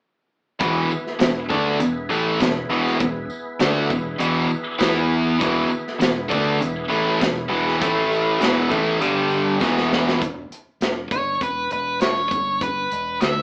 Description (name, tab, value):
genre	classic rock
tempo	100 BPM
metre	4/4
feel	straight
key	E major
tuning	A4 = 438 Hz
part	tonewheel organ	sustained chords	0.6-10.2 s	G3 to E5	-33 LUFS	equal	none
part	overdriven electric guitar	riff	0.6-10.2 s	E2 to E4	-24 LUFS	equal	none
part	tight distorted guitar	riff	0.6-10.2 s	E2 to E4	-26 LUFS	equal	distortion
part	fingered electric bass	bass	0.6-13.4 s	E1 to E2	-34 LUFS	equal	none
part	big rock drum kit	drums	0.6-13.4 s	hi-hat, kick drum, snare drum	-26 LUFS	equal	none
part	tambourine	percussion	0.9-10.0 s	none	-46 LUFS	equal	none
part	octave-fuzz lead guitar	melody	11.1-13.4 s	B4 to E5	-24 LUFS	equal	distortion
room	wet studio reverb, RT60 0.6 s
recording	band playing live in one room, AM radio sound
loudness	-21 LUFS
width	mono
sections	0.6-10.2 A section; 10.2-13.4 B section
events	drum fill 9.6-10.2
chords	0.6 E; 7.8 A5; 8.4 E; 9.0 G5; 9.6 E; 10.2 Em6; 12.3 G; 12.9 E7(no3)